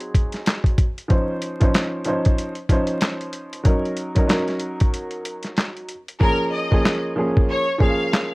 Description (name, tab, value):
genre	hip hop, boom-bap hip-hop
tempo	94 BPM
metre	4/4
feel	swing 59% on 16ths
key	Bb minor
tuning	A4 = 438 Hz
part	dark upright piano	accompaniment	0.0-8.3 s	F3 to C5	-23 LUFS	equal	cassette tape, low-pass filter, plate reverb
part	dusty soul sampler-style drum kit	drums	0.0-8.3 s	handclaps, hi-hat, kick drum, snare drum	-19 LUFS	equal	none
part	bright studio violin section	melody	6.2-8.3 s	Bb4 to F5	-24 LUFS	left 1 dB	plate reverb
room	light reverb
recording	worn, warbling old tape, cassette tape, vinyl crackle, warbly pitch drift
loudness	-18 LUFS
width	side -23 dB against mid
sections	0.0-6.2 A section; 6.2-8.3 B section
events	filter sweep on upright piano 0.0-6.2; break 4.9-6.2; hi-hats muted 6.2-8.3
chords	0.0 Ab7; 1.1 Dbmaj9; 3.7 Ebm7; 6.2 Bbm7